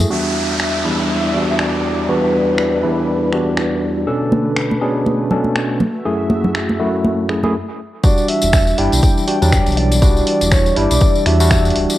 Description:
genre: deep house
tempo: 121 BPM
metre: 4/4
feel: swing 58% on 16ths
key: E dorian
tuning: A4 = 439 Hz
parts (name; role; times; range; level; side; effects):
- barky tine electric piano; stabs; 0.0-12.0 s; E2 to A4; -18 LUFS; equal; fast stereo tremolo, vintage 12-bit sampler grit, sidechain pumping, cassette tape
- sub bass with octave; bass; 0.0-0.1, 8.4-11.9 s; D1 to E2; -16 LUFS; equal; sidechain pumping
- punchy analog drum machine; drums; 0.0-12.0 s; finger snaps, hi-hat; -24 LUFS; equal; cassette tape
- congas; percussion; 0.0-0.1, 4.3-7.5 s; none; -20 LUFS; equal; sidechain pumping on perc
- breathy flute-like synth lead; melody; 0.1-3.8, 8.0-11.8 s; B4 to G5; -20 LUFS; equal; lush chorus, cassette tape, analog delay
- warm analog pad; sustained chords; 0.1-12.0 s; D3 to E5; -27 LUFS; equal; wide subtle chorus, sidechain pumping, cassette tape
- downlifter; sound effects; 0.1-4.1 s; none; -24 LUFS; equal; none
- electronic kick drum; drums; 8.0-11.6 s; none; -14 LUFS; equal; cassette tape
- tambourine; percussion; 8.0-12.0 s; none; -24 LUFS; left 4 dB; none
room: moderate spring reverb, RT60 1.6 s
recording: home recording on cassette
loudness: -13 LUFS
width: side -14 dB against mid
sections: 0.1-8.0 A section; 8.0-12.0 B section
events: break 7.5-8.0; drop 8.0-12.0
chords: 0.1 Em7; 4.1 Bm7; 5.8 F#m7; 8.0 Em7

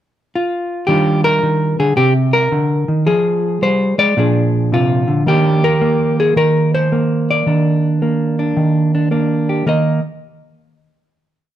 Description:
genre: solo jazz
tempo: 109 BPM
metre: 4/4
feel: swing 67% on 8ths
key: Eb major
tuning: A4 = 440 Hz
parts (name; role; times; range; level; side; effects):
- hollow-body jazz guitar; solo; 0.4-10.0 s; Bb2 to Eb5; -13 LUFS; equal; none
room: moderate large studio reverb, RT60 1.4 s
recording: close, detailed microphones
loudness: -13 LUFS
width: side -11 dB against mid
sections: 0.0-0.9 pickup bar; 0.9-9.7 A section; 9.7-11.6 final chord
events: none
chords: 0.0 N.C.; 0.9 Ebmaj9; 2.0 Cm9; 3.1 Fm; 4.2 Bb9; 5.3 Ebmaj9; 9.7 Eb5

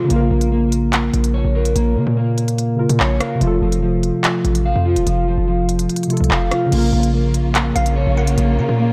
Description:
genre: hip hop, drill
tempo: 145 BPM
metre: 4/4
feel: half-time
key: Bb harmonic minor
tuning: A4 = 440 Hz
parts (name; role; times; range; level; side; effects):
- warbly lo-fi synth keys; accompaniment; 0.0-8.9 s; C3 to F5; -24 LUFS; equal; chorus, low-pass filter
- electric guitar at the edge of break-up; arpeggios; 0.0-8.9 s; F3 to F5; -23 LUFS; equal; lush chorus, low-pass filter, digital delay
- hard-hitting 808-style bass; bass; 0.1-8.9 s; Eb1 to Db3; -20 LUFS; equal; none
- drill drum kit; drums; 0.1-8.5 s; crash cymbal, handclaps, hi-hat, rim click; -25 LUFS; equal; none
- warm symphonic string section; sustained chords; 6.7-8.9 s; Db3 to F4; -26 LUFS; equal; none
- glassy wavetable pluck; second line; 7.8-8.4 s; F5 to Gb5; -28 LUFS; equal; chorus, digital delay
room: little or no reverb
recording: dark, warm production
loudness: -17 LUFS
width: mono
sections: 0.0-6.7 A section; 6.7-8.9 B section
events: none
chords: 0.1 Bbm; 3.4 F; 6.7 Bbm

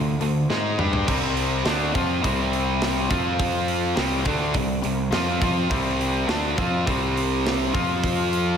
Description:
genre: hard rock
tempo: 104 BPM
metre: 4/4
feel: straight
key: unclear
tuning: A4 = 442 Hz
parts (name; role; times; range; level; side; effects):
- distorted electric guitar; riff; 0.0-8.6 s; C3 to G#4; -25 LUFS; left 8 dB; overdrive, slapback echo
- tight distorted guitar; riff; 0.0-8.6 s; C3 to G#4; -26 LUFS; right 8 dB; distortion
- fuzz picked electric bass; bass; 0.0-8.6 s; C2 to G#2; -27 LUFS; equal; overdrive
- tight metal drum kit; drums; 0.2-8.5 s; crash cymbal, hi-hat, kick drum, snare drum, toms; -28 LUFS; right 1 dB; none
room: moderate lush hall reverb, RT60 2.6 s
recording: big arena sound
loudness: -20 LUFS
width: side -7 dB against mid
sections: 0.0-8.6 A section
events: drum fill 0.5-1.1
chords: 0.0 D5; 1.1 C5; 3.1 F5; 4.0 C5; 7.7 F5

